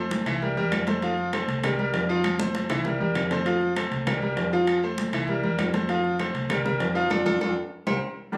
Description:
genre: latin, salsa.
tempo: 197 BPM.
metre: 4/4.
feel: straight.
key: F major.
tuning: A4 = 445 Hz.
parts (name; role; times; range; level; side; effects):
bright grand piano; accompaniment; 0.0-8.4 s; E3 to F5; -28 LUFS; equal; none.
vintage muted fingered electric bass; bass; 0.0-8.0 s; C2 to F2; -33 LUFS; equal; none.
congas; percussion; 0.1-8.4 s; none; -34 LUFS; equal; none.
timbales and agogo bells; percussion; 0.1-8.4 s; none; -35 LUFS; equal; none.
claves; percussion; 0.3-7.9 s; none; -38 LUFS; equal; none.
room: moderate large studio reverb, RT60 0.8 s.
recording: recorded on a phone in the room, club reverb.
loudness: -25 LUFS.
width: mono.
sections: 0.0-8.3 A section.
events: drum fill 2.2-3.5, 7.7-8.3; band accent 7.1-8.3.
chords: 0.4 C7; 1.0 F; 1.6 C5; 2.2 F; 2.9 C7; 3.5 F; 4.1 C5; 4.7 F; 5.3 C7; 5.9 F; 6.5 C5; 7.1 F6; 7.7 C5.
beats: 0.11 0.42 0.72 | 1.02 1.33 1.63 1.94 | 2.24 2.54 2.85 3.15 | 3.46 3.76 4.07 4.37 | 4.67 4.98 5.28 5.59 | 5.89 6.20 6.50 6.80 | 7.11 7.41 7.72 8.02 | 8.33.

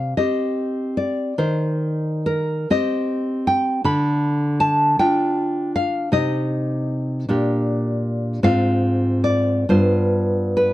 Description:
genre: romantic piece for solo classical guitar.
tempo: 43-53 BPM (dotted quarters).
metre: 6/8.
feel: rubato.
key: C minor.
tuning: A4 = 440 Hz.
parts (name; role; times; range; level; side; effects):
nylon-string guitar; solo; 0.0-10.7 s; G2 to B5; -18 LUFS; equal; none.
room: light reverb.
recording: dry, close 1970s-style studio recording.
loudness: -18 LUFS.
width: side -15 dB against mid.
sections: 0.0-10.7 A section.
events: none.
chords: 0.0 Cm; 1.4 Cm/Eb; 3.8 Bdim/D; 6.1 Cm; 7.3 Gm/Bb; 8.5 Fm/Ab; 9.7 G7.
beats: 0.18 | 1.37 2.68 | 3.84 4.98 | 6.12 7.28 | 8.45 9.69.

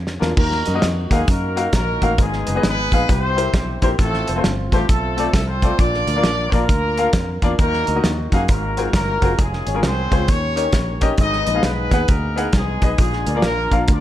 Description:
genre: uptempo gospel.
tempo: 133 BPM.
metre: 4/4.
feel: swing 64% on 8ths.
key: Eb harmonic minor.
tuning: A4 = 441 Hz.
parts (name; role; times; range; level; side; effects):
fingered electric bass; bass; 0.0-14.0 s; F1 to Gb2; -23 LUFS; equal; none.
warm soul drum kit; drums; 0.1-14.0 s; crash cymbal, hi-hat, kick drum, snare drum; -19 LUFS; equal; none.
clear grand piano; accompaniment; 0.2-13.8 s; Ab2 to Gb5; -23 LUFS; left 3 dB; none.
warm horn section; melody; 0.4-14.0 s; G3 to Eb5; -22 LUFS; equal; none.
room: light reverb.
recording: none.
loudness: -16 LUFS.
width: side -12 dB against mid.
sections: 0.4-14.0 A section.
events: drum fill 0.0-0.4.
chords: 0.4 Ebm; 2.2 Abm; 3.1 C7; 4.0 F; 5.8 Bb; 7.6 Ebm; 8.5 Ab13; 9.4 Db/F; 10.3 Eb7; 11.2 Abm; 13.0 Bb.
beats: | 0.38 0.83 1.28 1.73 | 2.19 2.64 3.09 3.54 | 3.99 4.44 4.89 5.34 | 5.79 6.24 6.69 7.14 | 7.59 8.04 8.49 8.94 | 9.39 9.84 10.29 10.74 | 11.19 11.64 12.09 12.54 | 12.99 13.44 13.89.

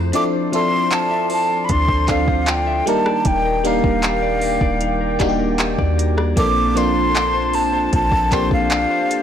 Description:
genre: contemporary R&B.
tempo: 77 BPM.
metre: 4/4.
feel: straight.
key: unclear.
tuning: A4 = 442 Hz.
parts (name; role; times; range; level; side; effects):
FM electric piano; accompaniment; 0.0-9.2 s; F3 to C5; -21 LUFS; equal; chorus, phaser.
clear woodwind section; sustained chords; 0.0-9.2 s; Eb3 to C6; -27 LUFS; right 2 dB; stereo widening.
soft 808-style bass; bass; 0.0-8.9 s; Eb1 to F2; -23 LUFS; equal; none.
direct-recorded clean electric guitar; arpeggios; 0.1-9.2 s; Bb3 to E5; -27 LUFS; left 6 dB; none.
smooth R&B drum kit; drums; 0.1-9.2 s; handclaps, hi-hat, kick drum, rim click; -22 LUFS; equal; overdrive.
breathy jazz flute; melody; 0.2-9.2 s; F5 to D6; -20 LUFS; equal; none.
room: light reverb.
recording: blown-out, overdriven recording, overdrive.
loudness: -15 LUFS.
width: side -9 dB against mid.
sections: 0.0-9.2 A section.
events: kick muted 0.1-0.9.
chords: 0.1 Dm9; 2.9 Ebmaj7; 6.4 Bbmaj9.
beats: | 0.14 0.92 1.69 2.47 | 3.25 4.03 4.81 5.59 | 6.37 7.15 7.93 8.71.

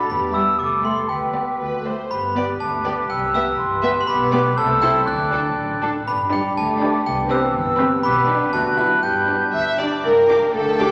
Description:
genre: cinematic, playful, whimsical film cue.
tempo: 120 BPM.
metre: 2/4.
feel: straight.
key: G major.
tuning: A4 = 440 Hz.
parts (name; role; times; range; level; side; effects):
glockenspiel with brass mallets; melody; 0.0-9.5 s; G5 to F#6; -26 LUFS; equal; none.
rich studio violin section; melody; 0.0-10.9 s; A4 to D6; -33 LUFS; equal; none.
concert flute; second line; 0.0-10.9 s; G5 to G6; -26 LUFS; equal; none.
warm studio violin section; second line; 0.0-10.9 s; F#4 to C5; -35 LUFS; equal; none.
warm studio viola section; accompaniment; 0.0-10.9 s; G3 to G4; -28 LUFS; equal; none.
mellow French horn section; sustained chords; 0.0-10.9 s; A3 to Bb4; -27 LUFS; equal; none.
warm studio cello section; bass; 0.0-10.9 s; E3 to B4; -33 LUFS; equal; none.
warm studio double bass section; bass; 0.1-10.9 s; G1 to G2; -33 LUFS; equal; none.
clear oboe; second line; 2.1-10.9 s; B4 to G5; -30 LUFS; equal; none.
warm clarinet; second line; 2.1-10.9 s; D4 to A4; -33 LUFS; equal; none.
cymbal swell and tam-tam; percussion; 8.0-10.9 s; none; -40 LUFS; equal; none.
room: wet concert hall reverb, RT60 2.2 s.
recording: none.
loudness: -20 LUFS.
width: mono.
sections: 0.0-2.1 A section; 2.1-10.0 B section.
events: band accent 10.0-10.5.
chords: 0.1 Em; 0.6 Am7/C; 1.1 G/D; 1.6 D; 2.1 G; 3.1 Cmaj7; 4.1 G/B; 4.6 Am/C; 5.1 D; 6.1 G; 7.1 Cmaj7; 8.0 G/B; 8.5 D69; 9.0 G; 10.0 Gm.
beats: | 0.09 0.59 | 1.09 1.60 | 2.11 2.60 | 3.10 3.59 | 4.08 4.57 | 5.07 5.57 | 6.08 6.57 | 7.06 7.55 | 8.04 8.54 | 9.04 9.54 | 10.04 10.54.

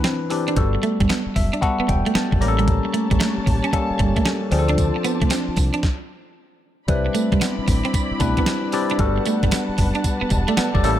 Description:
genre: R&B, new jack swing.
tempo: 114 BPM.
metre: 4/4.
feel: swing 65% on 16ths.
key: G major.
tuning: A4 = 441 Hz.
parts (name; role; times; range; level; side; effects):
bell-like tine electric piano; accompaniment; 0.0-11.0 s; E3 to Bb5; -23 LUFS; left 3 dB; phaser.
electric guitar at the edge of break-up; riff; 0.0-10.8 s; G3 to D4; -25 LUFS; right 5 dB; wide subtle chorus.
crisp 8-bit digital drum machine; drums; 0.0-11.0 s; hi-hat, kick drum, snare drum, tambourine; -23 LUFS; equal; none.
deep dub fingered electric bass; bass; 0.6-11.0 s; E1 to D2; -22 LUFS; equal; none.
muted studio string section; sustained chords; 2.7-11.0 s; G3 to B5; -30 LUFS; left 1 dB; none.
room: little or no reverb.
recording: none.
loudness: -18 LUFS.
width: side -12 dB against mid.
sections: 0.0-6.9 A section; 6.9-11.0 B section.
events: tine electric piano fill 1.1-2.7; stop 5.8-6.9.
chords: 0.0 Cmaj9; 0.6 Gmaj9; 2.4 A7b9; 4.5 Dm7; 6.9 Cmaj9; 9.0 Gmaj9.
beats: 0.05 | 0.57 1.10 1.62 2.15 | 2.68 3.20 3.73 4.26 | 4.78 5.31 5.83 6.36 | 6.89 7.41 7.94 8.47 | 8.99 9.52 10.05 10.57.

